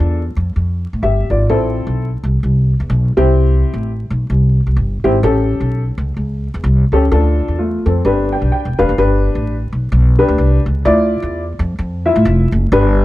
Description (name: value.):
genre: uptempo 1960s-style soul.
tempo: 128 BPM.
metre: 4/4.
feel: swing 59% on 8ths.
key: unclear.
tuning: A4 = 440 Hz.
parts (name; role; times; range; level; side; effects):
dark upright piano; accompaniment; 0.0-13.0 s; A3 to G5; -16 LUFS; left 2 dB; none.
upright bass; bass; 0.0-13.0 s; E1 to A2; -14 LUFS; equal; none.
room: light reverb.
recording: dark, warm production, vinyl crackle.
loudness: -13 LUFS.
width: side -16 dB against mid.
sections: 0.0-9.0 A section; 9.0-13.0 B section.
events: upright piano fill 8.0-9.0.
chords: 0.0 Dm; 1.5 Am; 3.1 C; 5.2 A7; 7.1 Dm; 8.0 G; 10.9 Dmadd9.